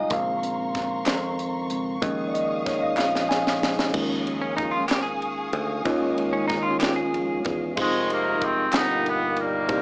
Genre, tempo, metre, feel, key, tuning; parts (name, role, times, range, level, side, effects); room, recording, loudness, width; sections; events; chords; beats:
slow gospel; 63 BPM (dotted quarters); 6/8; straight; A4 = 440 Hz
mellow tine electric piano; accompaniment; 0.0-9.8 s; G2 to Bb5; -27 LUFS; equal; wide subtle chorus, cassette tape
mellow tonewheel organ; sustained chords; 0.0-9.8 s; Db3 to C6; -31 LUFS; equal; fast rotary speaker, chorus vibrato, cassette tape
warm studio string section; sustained chords; 0.0-7.7 s; F5 to Eb6; -34 LUFS; equal; cassette tape
fingered electric bass; bass; 0.0-9.8 s; F1 to F2; -31 LUFS; equal
crisp fusion drum kit; drums; 0.1-9.8 s; crash cymbal, hi-hat, kick drum, ride cymbal, snare drum; -28 LUFS; equal; cassette tape
group handclap; percussion; 1.1-9.0 s; -30 LUFS; equal
clean electric guitar; second line; 4.4-7.9 s; Db4 to Ab4; -28 LUFS; equal; tremolo, cassette tape
warm horn section; melody; 7.8-9.8 s; C3 to D#4; -23 LUFS; equal; cassette tape
light reverb; home recording on cassette, small speaker sound; -22 LUFS; side -33 dB against mid
0.0-3.9 A section; 3.9-7.8 B section; 7.8-9.8 C section
tine electric piano solo 0.0-3.9; drum fill 3.0-3.9
0.1 Bbm9; 2.0 Eb9sus4; 7.8 Fm7; 8.7 G7alt
| 0.11 1.07 | 2.03 2.99 | 3.94 4.90 | 5.86 6.82 | 7.78 8.73 | 9.69